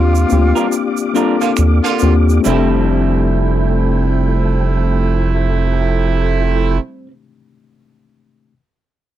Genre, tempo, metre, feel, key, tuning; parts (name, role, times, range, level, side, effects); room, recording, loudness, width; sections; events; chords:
R&B, neo-soul; 67-73 BPM; 4/4; swing 61% on 16ths; F major; A4 = 442 Hz
growling tenor saxophone; melody; 0.0-1.1 s; F4; -22 LUFS; right 1 dB; tape echo
reed electric piano; accompaniment; 0.0-8.5 s; A3 to A4; -18 LUFS; left 9 dB
tonewheel organ; sustained chords; 0.0-6.8 s; F3 to D6; -24 LUFS; equal; slow rotary speaker, chorus vibrato
rubbery square bass; bass; 0.0-6.8 s; F1 to Eb2; -14 LUFS; right 1 dB
egg shaker and finger snaps; percussion; 0.2-2.9 s; -26 LUFS; right 10 dB
electric guitar through a small old amp; second line; 0.6-7.1 s; G3 to Bb4; -23 LUFS; right 5 dB; warbly pitch drift
clear horn section; stabs; 1.4-6.8 s; C3 to F4; -20 LUFS; right 9 dB
little or no reverb; dry, close 1970s-style studio recording; -12 LUFS; side -12 dB against mid
0.0-2.4 A section; 2.4-6.0 B section
band accent 0.0-2.4; slowing down 0.0-2.4
0.0 Ebmaj9; 2.4 Fmaj9